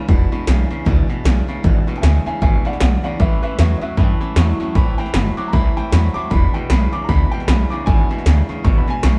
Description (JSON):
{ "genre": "rockabilly", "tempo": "154 BPM", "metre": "4/4", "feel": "swing 59% on 8ths", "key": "E mixolydian", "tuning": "A4 = 440 Hz", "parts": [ { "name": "picked steel-string acoustic guitar", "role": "accompaniment", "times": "0.0-9.2 s", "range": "E2 to E4", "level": "-30 LUFS", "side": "equal", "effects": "none" }, { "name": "twangy electric guitar", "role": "riff", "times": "0.0-9.2 s", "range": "E2 to F#3", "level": "-29 LUFS", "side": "equal", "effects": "none" }, { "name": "upright bass", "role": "bass", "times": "0.1-9.2 s", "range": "E1 to G2", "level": "-20 LUFS", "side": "equal", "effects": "none" }, { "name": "80s electronic pad drums", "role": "drums", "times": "0.1-9.1 s", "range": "hi-hat, kick drum, snare drum", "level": "-21 LUFS", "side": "equal", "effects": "none" }, { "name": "warm upright piano", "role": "melody", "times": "2.0-9.2 s", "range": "B4 to D6", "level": "-28 LUFS", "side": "equal", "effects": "none" } ], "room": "moderate stone room reverb, RT60 1.4 s", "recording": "band playing live in one room", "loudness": "-17 LUFS", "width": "mono", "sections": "0.0-9.2 A section", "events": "upright piano solo 0.0-9.2", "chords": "0.0 E7; 3.2 A7; 4.8 Am7; 6.3 E7", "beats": "| 0.09 0.47 0.86 1.25 | 1.64 2.03 2.42 2.81 | 3.20 3.59 3.98 4.37 | 4.76 5.15 5.54 5.92 | 6.32 6.70 7.09 7.48 | 7.87 8.26 8.65 9.04" }